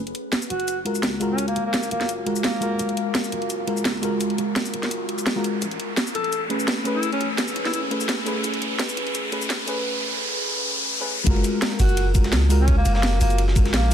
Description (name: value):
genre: liquid drum and bass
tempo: 170 BPM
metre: 4/4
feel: swing 54% on 16ths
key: F# major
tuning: A4 = 439 Hz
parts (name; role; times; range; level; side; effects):
- long sustained 808-style bass; bass; 0.0-13.9 s; E1 to C#2; -23 LUFS; equal; high-pass filter
- riser; sound effects; 2.9-11.3 s; none; -30 LUFS; equal; none
- drum and bass drum kit; drums; 0.1-13.9 s; hi-hat, shaker, snare drum; -26 LUFS; equal; overdrive
- warm alto saxophone; melody; 0.5-2.9, 6.1-7.8, 11.8-13.9 s; A#3 to A4; -29 LUFS; equal; low-pass filter, ping-pong delay
- mellow FM electric piano; accompaniment; 0.8-13.9 s; G#3 to B4; -26 LUFS; equal; chorus, ping-pong delay
- breakbeat sampler-style drum kit; drums; 11.3-13.9 s; ride cymbal, snare drum; -34 LUFS; right 2 dB; high-pass filter on cymbals, high-pass filter on snare
- electronic kick drum; drums; 11.3-13.6 s; none; -20 LUFS; equal; none
room: light reverb, digital ambience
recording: dense, heavily limited modern master, high-pass filter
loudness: -20 LUFS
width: side -9 dB against mid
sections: 0.0-11.3 A section; 11.3-13.9 B section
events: build-up 0.0-11.3; filter sweep on alto saxophone 0.0-11.3; filter sweep 0.0-11.3; riser 2.9-11.3; drop 11.3-13.9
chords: 0.0 F#maj9; 5.6 Amaj9; 11.3 F#maj9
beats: 0.33 0.68 1.03 | 1.38 1.74 2.09 2.44 | 2.80 3.15 3.50 3.85 | 4.21 4.56 4.91 5.27 | 5.62 5.97 6.33 6.68 | 7.03 7.38 7.74 8.09 | 8.44 8.80 9.15 9.50 | 9.86 10.21 10.56 10.91 | 11.27 11.62 11.97 12.32 | 12.68 13.03 13.38 13.74